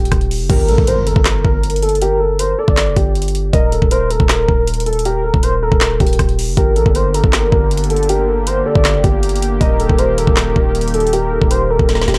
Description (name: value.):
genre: hip hop, trap.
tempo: 158 BPM.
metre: 4/4.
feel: half-time.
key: G minor.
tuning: A4 = 438 Hz.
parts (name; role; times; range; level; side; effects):
dark concert grand piano; melody; 0.0-12.2 s; G4 to Eb5; -23 LUFS; equal; low-pass filter.
hard-hitting 808-style bass; bass; 0.0-12.2 s; Eb1 to Bb1; -20 LUFS; equal; none.
trap drum kit; drums; 0.1-12.2 s; crash cymbal, handclaps, hi-hat, kick drum, rim click, snare drum; -18 LUFS; equal; none.
warm velvety synth lead; second line; 0.5-12.2 s; A4 to D5; -22 LUFS; equal; chorus, analog delay.
impact; sound effects; 0.5-2.0 s; none; -27 LUFS; equal; none.
warm analog pad; sustained chords; 6.6-12.2 s; D3 to G4; -25 LUFS; equal; chorus.
room: little or no reverb.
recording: dry, gritty hardware recording, cassette tape.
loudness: -15 LUFS.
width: mono.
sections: 0.5-12.2 A section.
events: impact 0.5-2.0; drum fill 11.9.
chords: 0.5 Gm; 3.5 Eb; 6.6 Gm; 9.6 Eb.